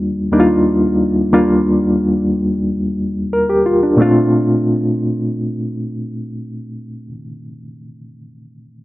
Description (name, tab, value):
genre	soul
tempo	90 BPM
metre	4/4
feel	straight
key	Bb major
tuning	A4 = 443 Hz
part	reed electric piano	solo	0.0-8.8 s	Eb2 to Bb4	-14 LUFS	equal	fast tremolo
room	moderate plate reverb, RT60 2.7 s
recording	none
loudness	-13 LUFS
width	side -17 dB against mid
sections	0.0-4.0 A section; 4.0-6.7 B section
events	none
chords	0.0 Ebmaj9; 4.0 Bbmaj9